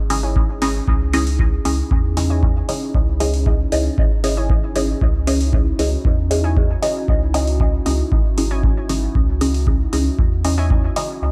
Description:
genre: dub techno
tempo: 116 BPM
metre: 4/4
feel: straight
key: C# minor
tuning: A4 = 437 Hz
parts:
  - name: dark analog pad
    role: sustained chords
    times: 0.0-11.3 s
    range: C#4 to G#4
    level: -31 LUFS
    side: equal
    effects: chorus, phaser, sidechain pumping
  - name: pure sine sub bass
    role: bass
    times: 0.0-11.3 s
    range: G#1 to E2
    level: -23 LUFS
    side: equal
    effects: sidechain pumping
  - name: filtered dub chord stab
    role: stabs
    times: 0.1-11.1 s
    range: C#4 to D#5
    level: -25 LUFS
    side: equal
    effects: phaser, sidechain pumping, dub echo
  - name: electronic hi-hat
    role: drums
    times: 0.1-11.1 s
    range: none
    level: -32 LUFS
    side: equal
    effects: none
  - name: warbly dusty pluck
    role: riff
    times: 0.2-10.8 s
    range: E4 to G#5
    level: -36 LUFS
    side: equal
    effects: chorus, sidechain pumping, dub echo
  - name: electronic kick drum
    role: drums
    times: 0.4-10.8 s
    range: none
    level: -20 LUFS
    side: equal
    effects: none
room: little or no reverb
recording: dark, warm production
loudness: -18 LUFS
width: mono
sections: 0.0-11.3 A section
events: filter sweep on synth stab 0.0-11.3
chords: 0.0 C#madd9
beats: 0.36 | 0.88 1.39 1.91 2.43 | 2.95 3.46 3.98 4.50 | 5.01 5.53 6.05 6.57 | 7.08 7.60 8.12 8.64 | 9.15 9.67 10.19 10.71 | 11.22

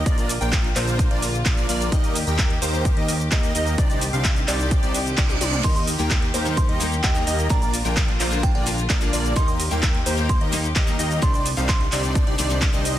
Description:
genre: EDM, festival progressive house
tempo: 129 BPM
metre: 4/4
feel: straight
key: Eb major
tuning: A4 = 440 Hz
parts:
  - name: warm studio string section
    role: sustained chords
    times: 0.0-13.0 s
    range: D3 to G4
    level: -33 LUFS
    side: left 1 dB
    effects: sidechain pumping
  - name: plucky unison lead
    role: arpeggios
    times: 0.0-13.0 s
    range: C5 to G5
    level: -31 LUFS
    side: equal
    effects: sidechain pumping, digital delay
  - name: dense compressed supersaw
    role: riff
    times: 0.0-13.0 s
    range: Bb3 to G5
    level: -28 LUFS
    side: equal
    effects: sidechain pumping, digital delay
  - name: fat analog bass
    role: bass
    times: 0.0-13.0 s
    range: Bb1 to Eb2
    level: -26 LUFS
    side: equal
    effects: sidechain pumping
  - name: electronic kick drum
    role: drums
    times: 0.1-12.7 s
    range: none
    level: -21 LUFS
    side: equal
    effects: studio ambience
  - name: house drum kit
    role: drums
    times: 0.1-12.9 s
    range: cabasa, crash cymbal, handclaps, hi-hat, toms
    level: -26 LUFS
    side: equal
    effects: studio ambience
  - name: reverse cymbal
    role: sound effects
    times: 5.0-5.6 s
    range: none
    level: -31 LUFS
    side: right 6 dB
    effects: none
  - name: glassy synth bell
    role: melody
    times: 5.6-11.9 s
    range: G5 to C6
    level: -31 LUFS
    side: right 3 dB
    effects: chorus, digital delay
  - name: picked steel-string acoustic guitar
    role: accompaniment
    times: 5.6-12.8 s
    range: D3 to F4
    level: -31 LUFS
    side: left 4 dB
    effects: sidechain pumping
room: light reverb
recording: dense, heavily limited modern master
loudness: -18 LUFS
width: side -12 dB against mid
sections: 0.0-13.0 A section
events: reverse cymbal 5.0-5.6; drum fill 5.2-5.6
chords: 0.1 Bb; 1.9 Eb; 3.8 Cmadd9; 5.6 Eb; 7.5 Bb; 9.4 Eb; 11.2 Cmadd9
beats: | 0.06 0.53 0.99 1.46 | 1.92 2.39 2.85 3.32 | 3.78 4.25 4.71 5.18 | 5.64 6.11 6.57 7.04 | 7.50 7.97 8.43 8.90 | 9.36 9.83 10.29 10.76 | 11.22 11.69 12.15 12.62

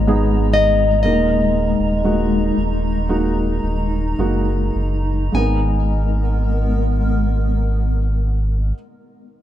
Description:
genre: pop ballad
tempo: 51-63 BPM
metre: 4/4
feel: straight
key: G# minor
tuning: A4 = 438 Hz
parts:
  - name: nylon-string guitar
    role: melody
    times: 0.0-8.7 s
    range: C#5 to G#5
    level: -20 LUFS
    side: left 3 dB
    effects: none
  - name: felt-muted upright piano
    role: accompaniment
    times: 0.0-9.4 s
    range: G#1 to B4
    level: -22 LUFS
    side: right 2 dB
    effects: none
  - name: granular cloud pad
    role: sustained chords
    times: 0.0-8.7 s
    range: G#3 to A#5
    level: -23 LUFS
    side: left 2 dB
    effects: built-in reverb
  - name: sub bass with octave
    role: bass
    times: 0.0-8.7 s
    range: D#1 to G#1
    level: -19 LUFS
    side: equal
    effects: none
room: light reverb, studio ambience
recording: dark, warm production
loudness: -16 LUFS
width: side -12 dB against mid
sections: 0.0-5.3 A section; 5.3-9.4 B section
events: slowing down 0.0-5.3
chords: 0.0 G#madd9; 1.0 D#sus4; 5.3 G#madd9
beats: 0.07 | 1.04 2.05 3.09 4.18 | 5.34 6.52 7.71 8.89

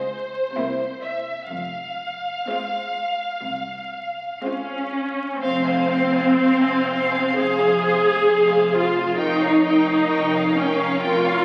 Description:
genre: classical, slow romantic movement for symphony orchestra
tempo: 58-68 BPM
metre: 4/4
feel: rubato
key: F minor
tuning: A4 = 442 Hz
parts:
  - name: warm symphonic violin section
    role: melody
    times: 0.0-11.4 s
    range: C5 to Db6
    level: -32 LUFS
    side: equal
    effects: none
  - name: rich studio violin section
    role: second line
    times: 0.0-11.4 s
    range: E4 to G5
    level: -27 LUFS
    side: equal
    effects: none
  - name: rich studio viola section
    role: accompaniment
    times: 0.0-11.4 s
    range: Ab3 to Ab4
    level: -22 LUFS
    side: equal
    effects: none
  - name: rich studio cello section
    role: bass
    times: 0.0-11.4 s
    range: C2 to Db3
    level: -35 LUFS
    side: equal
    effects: none
  - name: rich studio double bass section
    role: bass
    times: 0.0-11.4 s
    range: F1 to Db2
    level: -38 LUFS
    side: equal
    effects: none
room: wet scoring stage reverb, RT60 1.6 s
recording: very old 78 rpm record, vinyl crackle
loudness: -21 LUFS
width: mono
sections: 0.0-5.4 A section; 5.4-11.4 B section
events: none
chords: 0.0 Dbmaj7; 0.6 C7; 1.5 Fm; 9.2 Gm7b5/F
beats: 0.57 | 1.51 2.49 3.46 4.43 | 5.41 6.37 7.37 8.29 | 9.19 10.11 11.01

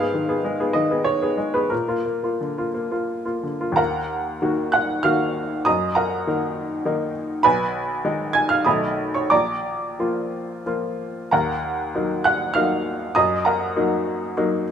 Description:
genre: classical, romantic character piece for solo piano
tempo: 85-104 BPM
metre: 3/4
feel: rubato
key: Eb minor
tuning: A4 = 438 Hz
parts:
  - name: bright upright piano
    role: solo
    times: 0.0-14.7 s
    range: Bb1 to Ab6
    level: -20 LUFS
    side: equal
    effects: none
room: moderate large studio reverb, RT60 1.1 s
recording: minimal, uncompressed stereo recording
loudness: -20 LUFS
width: side -8 dB against mid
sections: 0.0-3.8 A section; 3.8-14.7 A section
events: none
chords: 0.0 Abm; 1.7 Bb; 3.8 Ebm; 5.7 Ebm/Gb; 7.4 Abm/Cb; 8.7 B7; 9.3 Bb; 11.3 Ebm; 13.2 Ebm/Gb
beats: 0.45 1.05 | 1.71 2.41 3.10 | 3.79 4.42 5.05 | 5.66 6.27 6.86 | 7.45 8.04 8.65 | 9.31 9.99 10.66 | 11.32 11.94 12.55 | 13.16 13.77 14.37

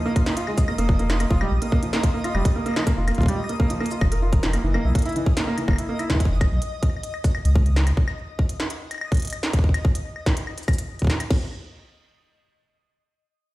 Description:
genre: IDM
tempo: 144 BPM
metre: 4/4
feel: straight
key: unclear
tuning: A4 = 439 Hz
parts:
  - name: felt-muted upright piano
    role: arpeggios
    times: 0.0-6.2 s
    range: Fb3 to Bb4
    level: -26 LUFS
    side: right 1 dB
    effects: tape echo
  - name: twinkling granular texture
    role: texture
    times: 0.0-9.6 s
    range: Eb5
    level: -36 LUFS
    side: equal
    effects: built-in reverb, sidechain pumping
  - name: glitchy drum kit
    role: drums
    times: 0.2-11.4 s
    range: crash cymbal, kick drum, snare drum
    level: -20 LUFS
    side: equal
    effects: none
  - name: industrial drum kit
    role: drums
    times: 0.2-11.3 s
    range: claves, hi-hat, shaker, snare drum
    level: -29 LUFS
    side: equal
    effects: digital delay
  - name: warm sub bass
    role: bass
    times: 0.8-7.9 s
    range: F1 to Db2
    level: -21 LUFS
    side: equal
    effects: none
room: digital ambience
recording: played on a big sound system in a bare room, stone room reverb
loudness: -20 LUFS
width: side -18 dB against mid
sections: 0.0-11.3 A section; 11.3-13.5 B section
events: none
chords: 0.0 Bbsus4; 1.3 F7sus4; 4.6 Gb7(no3) (rootless); 8.0 N.C.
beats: 0.06 0.47 0.89 | 1.30 1.72 2.14 2.56 | 2.97 3.39 3.81 4.22 | 4.64 5.05 5.47 5.89 | 6.30 6.72 7.14 7.55 | 7.97 8.39 8.80 9.22 | 9.64 10.05 10.47 10.89 | 11.30

